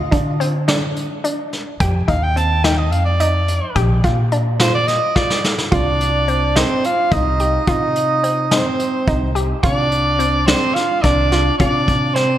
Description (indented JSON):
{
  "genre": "progressive instrumental, band music in an uneven meter",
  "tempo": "214 BPM (eighths)",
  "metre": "7/8",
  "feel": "straight",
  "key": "unclear",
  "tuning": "A4 = 440 Hz",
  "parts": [
    { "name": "analog pluck", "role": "arpeggios", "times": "0.0-12.4 s", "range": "C4 to G4", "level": "-23 LUFS", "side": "equal", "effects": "chorus" },
    { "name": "upright bass", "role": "bass", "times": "0.0-12.4 s", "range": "Bb1 to D3", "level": "-19 LUFS", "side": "equal", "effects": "none" },
    { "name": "vintage brush drum kit", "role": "drums", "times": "0.1-12.3 s", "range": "hi-hat, kick drum, snare drum", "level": "-21 LUFS", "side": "equal", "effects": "none" },
    { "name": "clear soprano saxophone", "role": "melody", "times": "2.1-12.4 s", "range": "C5 to A5", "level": "-20 LUFS", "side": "equal", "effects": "diffuse ambient delay" },
    { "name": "mellow flugelhorn", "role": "second line", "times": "5.7-12.4 s", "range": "C4 to F4", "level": "-22 LUFS", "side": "right 3 dB", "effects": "none" }
  ],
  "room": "moderate church reverb, RT60 2.6 s",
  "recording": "dreamy mix soaked in reverb",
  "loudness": "-14 LUFS",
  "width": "side -12 dB against mid",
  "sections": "0.0-5.7 A section; 5.7-12.4 B section",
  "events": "soprano saxophone solo 0.0-5.7; drum fill 5.2-5.7",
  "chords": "0.0 D7(no3); 1.8 Fsus2; 3.8 Bb6; 5.7 F5/C; 9.6 Csus4",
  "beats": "0.12 0.40 0.68 0.96 1.24 1.52 | 1.80 2.08 2.36 2.64 2.92 3.20 3.48 | 3.76 4.04 4.32 4.60 4.88 5.16 5.44 | 5.72 6.00 6.28 6.56 6.84 7.12 7.40 | 7.68 7.96 8.24 8.52 8.80 9.08 9.36 | 9.64 9.92 10.20 10.48 10.76 11.04 11.32 | 11.60 11.88 12.16"
}